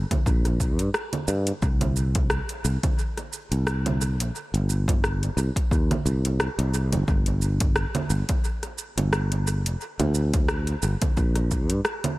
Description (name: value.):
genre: organic downtempo.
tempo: 88 BPM.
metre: 4/4.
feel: swing 56% on 16ths.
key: C minor.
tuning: A4 = 441 Hz.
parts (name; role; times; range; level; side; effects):
sustaining fretless electric bass; bass; 0.0-11.8 s; F1 to G2; -24 LUFS; equal; sidechain pumping.
deep house drum kit; drums; 0.1-12.2 s; congas, hi-hat, rim click, shaker; -29 LUFS; right 2 dB; overdrive, dub echo.
electronic kick drum; drums; 0.1-11.7 s; none; -25 LUFS; equal; overdrive.
room: little or no reverb.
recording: echo-heavy mix.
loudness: -22 LUFS.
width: side -19 dB against mid.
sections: 0.0-12.2 A section.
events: none.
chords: none.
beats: 0.26 0.94 | 1.62 2.31 2.99 3.67 | 4.35 5.03 5.71 6.40 | 7.08 7.76 8.44 9.12 | 9.80 10.49 11.17 11.85.